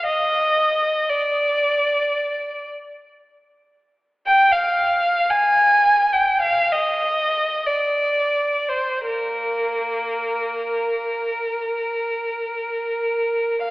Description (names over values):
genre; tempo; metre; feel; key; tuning
classical, free, expressive piece for unaccompanied violin; 34-60 BPM; 4/4; rubato; Bb mixolydian; A4 = 438 Hz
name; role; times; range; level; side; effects
rich violin; solo; 0.0-13.7 s; Bb3 to Ab5; -18 LUFS; equal; none
room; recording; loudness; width
wet concert hall reverb, RT60 2.2 s; recorded in a church or concert hall, telephone sound; -18 LUFS; side -21 dB against mid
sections
0.0-13.7 A section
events
none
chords
none